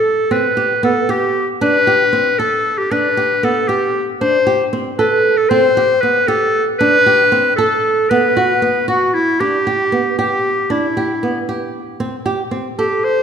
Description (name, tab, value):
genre	contemporary instrumental, contemporary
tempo	231 BPM (eighths)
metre	5/8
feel	straight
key	E minor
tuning	A4 = 438 Hz
part	bright clarinet	melody	0.0-13.2 s	E4 to C5	-14 LUFS	left 1 dB	none
part	flamenco guitar	arpeggios	0.0-13.1 s	B3 to A4	-18 LUFS	right 3 dB	none
room	moderate scoring stage reverb, RT60 1.9 s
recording	minimal, uncompressed stereo recording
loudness	-13 LUFS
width	side -7 dB against mid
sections	0.0-9.4 A section; 9.4-13.2 B section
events	none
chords	0.3 C5; 1.6 D7sus4; 2.9 Gadd9; 4.2 D7sus4; 5.5 C5; 6.8 D7sus4; 8.1 B5; 9.4 Em7; 12.0 Am7